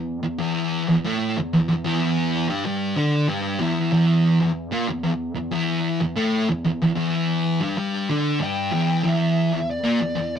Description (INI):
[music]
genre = metal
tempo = 94 BPM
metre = 4/4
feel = straight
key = E minor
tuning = A4 = 442 Hz
[part]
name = thick fuzz guitar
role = riff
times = 0.0-10.4 s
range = E2 to D4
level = -20 LUFS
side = equal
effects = distortion
[part]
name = fuzz lead guitar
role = melody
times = 8.4-10.4 s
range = D5 to G5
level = -26 LUFS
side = left 1 dB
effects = distortion
[sound]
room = moderate studio reverb, RT60 0.5 s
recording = rough rehearsal-room recording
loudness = -20 LUFS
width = side -8 dB against mid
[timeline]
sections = 0.0-9.0 A section; 9.0-10.4 B section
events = none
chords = 0.0 Em; 9.0 N.C.